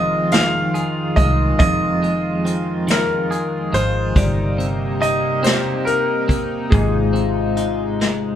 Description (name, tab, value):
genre	six-eight pop ballad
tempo	47 BPM (dotted quarters)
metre	6/8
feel	straight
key	unclear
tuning	A4 = 440 Hz
part	clear grand piano	melody	0.0-8.4 s	Ab4 to F5	-22 LUFS	left 1 dB	none
part	dark French horn section	second line	0.0-8.4 s	Eb4 to G4	-28 LUFS	left 4 dB	none
part	clean electric guitar	accompaniment	0.0-8.4 s	F2 to Bb4	-23 LUFS	equal	tremolo
part	chorused pulse-width pad	sustained chords	0.0-8.4 s	C3 to F4	-25 LUFS	right 1 dB	none
part	vintage muted fingered electric bass	bass	0.0-8.4 s	F1 to Eb2	-22 LUFS	equal	none
part	vintage brush drum kit	drums	0.3-8.2 s	hi-hat, kick drum, snare drum	-19 LUFS	equal	none
room	wet studio reverb, RT60 0.7 s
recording	band playing live in one room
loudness	-16 LUFS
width	side -10 dB against mid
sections	0.0-8.4 A section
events	drum fill 8.0-8.4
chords	0.0 Fm7; 4.2 Cm7/G; 6.7 Ab